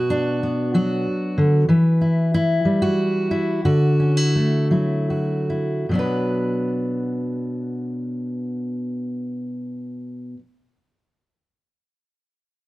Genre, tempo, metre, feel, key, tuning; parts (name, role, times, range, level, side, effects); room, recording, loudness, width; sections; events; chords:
folk, solo fingerstyle acoustic guitar; 73-95 BPM; 3/4; rubato; B minor; A4 = 441 Hz
fingerpicked steel-string acoustic guitar; solo; 0.0-10.4 s; B2 to B4; -19 LUFS; equal
light reverb; dark, warm production; -19 LUFS; side -18 dB against mid
0.0-5.9 A section; 5.9-10.8 B section
slowing down 1.7-5.9
0.0 Bm; 1.7 Em; 3.7 Dadd9; 5.9 Bm